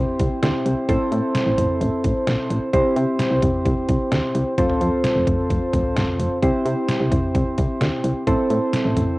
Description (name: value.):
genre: synth-pop.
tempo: 130 BPM.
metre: 4/4.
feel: straight.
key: C major.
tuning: A4 = 441 Hz.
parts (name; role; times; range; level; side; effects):
soft electric-piano-like synth keys; accompaniment; 0.0-9.2 s; C4 to C5; -21 LUFS; equal; chorus, cassette tape.
solid FM bass; bass; 0.0-9.1 s; F1 to C3; -22 LUFS; equal; none.
detuned 8-bit digital drum machine; drums; 0.2-9.1 s; hi-hat, kick drum, snare drum, toms; -24 LUFS; equal; cassette tape.
room: moderate booth ambience, RT60 0.2 s.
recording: home recording on cassette.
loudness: -18 LUFS.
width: side -20 dB against mid.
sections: 0.0-9.2 A section.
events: none.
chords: 0.0 C; 0.9 Am; 2.7 C; 4.6 F; 6.4 C; 8.3 Am.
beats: 0.43 | 0.89 1.35 1.81 2.27 | 2.73 3.19 3.66 4.12 | 4.58 5.04 5.50 5.96 | 6.43 6.89 7.35 7.81 | 8.27 8.73.